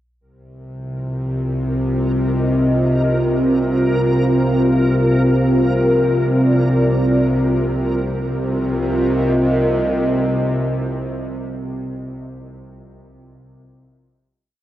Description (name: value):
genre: dark ambient drone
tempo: free time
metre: none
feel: none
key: C minor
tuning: A4 = 440 Hz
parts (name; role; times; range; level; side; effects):
- dark analog pad; sustained chords; 1.4-12.0 s; C4 to Eb5; -18 LUFS; equal; chorus
- bowed-like drone; drone; 0.7-11.5 s; C2 to C3; -19 LUFS; equal; built-in reverb
- backwards swelling texture; texture; 1.7-8.0 s; Bb4; -29 LUFS; equal; built-in reverb
room: wet cathedral reverb, RT60 5.5 s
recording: worn, warbling old tape, cassette tape, warbly pitch drift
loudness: -15 LUFS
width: side -13 dB against mid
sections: 0.2-8.0 A section; 8.0-11.9 final chord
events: none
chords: 0.2 Cm; 4.1 C9sus4; 8.0 Cm